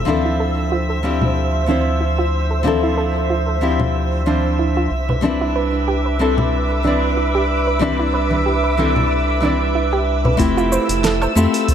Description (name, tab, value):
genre	sunset chillout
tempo	93 BPM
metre	4/4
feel	swing 55% on 16ths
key	unclear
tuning	A4 = 440 Hz
part	nylon-string guitar	accompaniment	0.0-11.7 s	F3 to D5	-20 LUFS	moving between left 5 dB and right 3 dB	auto-pan, digital delay
part	soft string machine	sustained chords	0.0-11.7 s	A4 to E6	-23 LUFS	equal	ensemble chorus
part	soft round pluck	arpeggios	0.0-11.4 s	D4 to C5	-25 LUFS	right 4 dB	chorus, cassette tape, digital delay
part	round analog bass	bass	0.0-11.5 s	F1 to F2	-21 LUFS	equal	none
part	drifting glass-harmonics texture	texture	0.0-11.7 s	E5 to A6	-28 LUFS	right 4 dB	chorus, built-in reverb
part	congas	percussion	0.1-10.4 s	none	-24 LUFS	left 2 dB	none
part	electronic kick drum	drums	10.4-11.7 s	none	-18 LUFS	equal	studio reverb
part	smooth R&B drum kit	drums	10.4-11.7 s	hi-hat, shaker, snare drum, woodblock	-24 LUFS	right 1 dB	studio reverb
room	moderate scoring stage reverb, RT60 2.1 s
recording	dark, warm production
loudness	-15 LUFS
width	side -9 dB against mid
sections	0.0-10.4 A section; 10.4-11.7 B section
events	filter sweep on string machine 0.0-10.4; filter sweep on synth arpeggio sound 0.0-10.4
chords	0.1 Dm9; 4.9 Cmaj9; 10.4 Fmaj7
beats	| 0.07 0.72 1.36 2.01 | 2.65 3.30 3.95 4.59 | 5.24 5.88 6.53 7.17 | 7.82 8.46 9.11 9.75 | 10.40 11.04 11.69